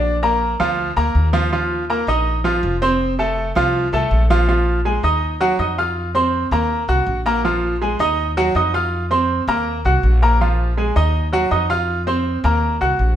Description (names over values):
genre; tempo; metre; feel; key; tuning
latin, salsa; 162 BPM; 4/4; straight; unclear; A4 = 440 Hz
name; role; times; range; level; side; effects
bright baby grand piano; accompaniment; 0.0-13.1 s; F3 to Gb6; -18 LUFS; right 1 dB; none
upright bass; bass; 0.0-13.2 s; F1 to F2; -20 LUFS; equal; none
room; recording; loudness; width
wet stone room reverb, RT60 1.1 s; band playing live in one room; -16 LUFS; side -10 dB against mid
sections
0.0-4.5 A section; 4.5-13.2 B section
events
none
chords
0.0 Bb; 1.5 Ebsus2; 3.0 F; 4.5 Bb5; 5.2 Ebm; 6.0 F5; 6.7 Ebm; 7.4 Bb5; 8.2 Ebm; 8.9 F5; 9.7 Ebm; 10.4 Bb5; 11.1 Ebm; 11.9 F5; 12.6 Ebm